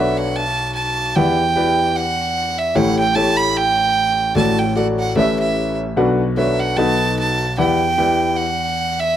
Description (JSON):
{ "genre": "gospel", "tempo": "150 BPM", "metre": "4/4", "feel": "swing 56% on 8ths", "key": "unclear", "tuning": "A4 = 441 Hz", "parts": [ { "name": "clear fiddle", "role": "melody", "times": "0.0-9.2 s", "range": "E5 to B5", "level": "-18 LUFS", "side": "right 4 dB", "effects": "none" }, { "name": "warm concert grand piano", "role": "accompaniment", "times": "0.0-9.1 s", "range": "A1 to G5", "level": "-18 LUFS", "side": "left 2 dB", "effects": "none" } ], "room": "light reverb", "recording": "dry, close 1970s-style studio recording", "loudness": "-15 LUFS", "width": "side -10 dB against mid", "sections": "0.0-9.2 A section", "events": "none", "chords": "0.0 Bm9; 1.2 Em9; 2.8 A7; 4.4 D/A; 5.2 A9; 6.0 Bm7; 6.8 B7; 7.6 Em9" }